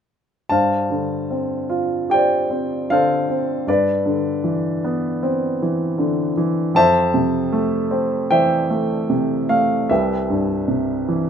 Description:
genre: classical, lyrical solo piano.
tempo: 76 BPM.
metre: 4/4.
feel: rubato.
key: C major.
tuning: A4 = 442 Hz.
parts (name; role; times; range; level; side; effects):
warm baby grand piano; solo; 0.5-11.3 s; C2 to A5; -17 LUFS; equal; none.
room: light reverb.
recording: minimal, uncompressed stereo recording.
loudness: -17 LUFS.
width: side -8 dB against mid.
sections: 0.5-11.3 A section.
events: none.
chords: 0.5 G9sus4; 3.7 Cmaj9/G; 6.8 Fmaj7; 9.9 Cmaj7.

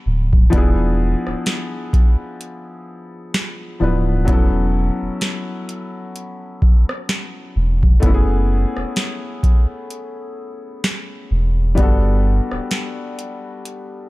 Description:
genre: contemporary R&B.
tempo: 64 BPM.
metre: 4/4.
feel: swing 58% on 16ths.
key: unclear.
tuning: A4 = 440 Hz.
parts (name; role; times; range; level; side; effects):
felt-muted upright piano; accompaniment; 0.0-14.1 s; F3 to B4; -24 LUFS; left 2 dB; none.
warm sub bass; bass; 0.1-12.6 s; D1 to G1; -18 LUFS; equal; none.
booming analog drum machine; drums; 0.3-13.9 s; hi-hat, kick drum, rim click, snare drum; -16 LUFS; equal; none.
room: digital ambience.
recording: dark, warm production.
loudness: -16 LUFS.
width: side -20 dB against mid.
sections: 0.0-14.1 A section.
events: none.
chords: 0.0 Gmaj7; 0.5 E7b9; 4.3 A6/E; 8.0 F#m11; 11.8 Gmaj7.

